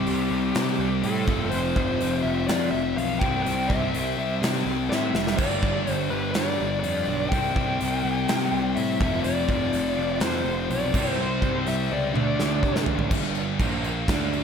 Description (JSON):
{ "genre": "hard rock", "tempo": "124 BPM", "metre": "4/4", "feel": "straight", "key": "unclear", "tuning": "A4 = 436 Hz", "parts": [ { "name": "dark smooth lead guitar", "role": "melody", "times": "0.0-12.8 s", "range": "G4 to G5", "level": "-29 LUFS", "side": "left 2 dB", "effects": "overdrive, slapback echo, tape echo" }, { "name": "overdriven electric guitar", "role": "riff", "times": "0.0-13.1 s", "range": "F2 to D4", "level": "-29 LUFS", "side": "left 4 dB", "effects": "spring reverb, slapback echo" }, { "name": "overdriven semi-hollow guitar", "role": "riff", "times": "0.0-14.4 s", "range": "F2 to D4", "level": "-32 LUFS", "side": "right 10 dB", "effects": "slapback echo" }, { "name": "scooped high-gain guitar", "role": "riff", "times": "0.0-14.4 s", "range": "F2 to D4", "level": "-32 LUFS", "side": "left 9 dB", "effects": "distortion, slapback echo" }, { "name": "fuzz picked electric bass", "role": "bass", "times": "0.0-14.4 s", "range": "F1 to C3", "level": "-30 LUFS", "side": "right 1 dB", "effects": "overdrive" }, { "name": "gated 80s drum kit", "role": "drums", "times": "0.1-14.4 s", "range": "crash cymbal, hi-hat, kick drum, snare drum, toms", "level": "-28 LUFS", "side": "right 1 dB", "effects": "none" } ], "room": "moderate recital hall reverb, RT60 1.5 s, small room ambience", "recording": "big arena sound", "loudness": "-22 LUFS", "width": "side -7 dB against mid", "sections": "0.0-13.1 A section; 13.1-14.4 B section", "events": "drum fill 4.9-5.4, 12.2-13.1", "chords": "0.0 C5; 1.3 F5; 3.2 C; 5.4 G5; 7.3 C5; 9.0 F5; 11.0 C5; 12.2 D5; 13.1 G5; 13.6 Bb5" }